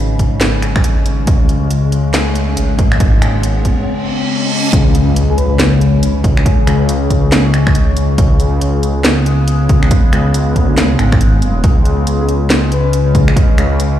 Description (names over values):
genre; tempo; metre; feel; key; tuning
deep dubstep; 139 BPM; 4/4; swing 61% on 16ths, half-time; unclear; A4 = 445 Hz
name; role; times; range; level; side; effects
overtone-sweeping drone; sustained chords; 0.0-14.0 s; C#3 to C#4; -19 LUFS; left 2 dB; chorus, built-in reverb
dark detuned saw bass; bass; 0.0-14.0 s; G#1 to D2; -13 LUFS; equal; none
riser, reverse cymbal and impact; sound effects; 0.4-6.5 s; none; -22 LUFS; right 1 dB; none
electronic kick drum; drums; 0.2-13.5 s; none; -12 LUFS; equal; overdrive
garage drum kit; drums; 0.2-13.9 s; finger snaps, hi-hat, snare drum; -19 LUFS; right 1 dB; high-pass filter on hats, high-pass filter on snare, high-pass filter on room
breathy flute-like synth lead; melody; 5.3-5.7, 12.2-13.1 s; G#4 to B4; -24 LUFS; left 5 dB; wide subtle chorus, cassette tape, dub echo
room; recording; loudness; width
light reverb; played on a big sound system in a bare room, large studio reverb; -10 LUFS; side -11 dB against mid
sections
0.0-4.7 A section; 4.7-14.0 B section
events
build-up 0.0-4.7; riser 0.4-4.7; break 3.9-4.7; reverse cymbal 3.9-4.7; drop 4.7-14.0; impact 4.7-6.5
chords
0.0 C#5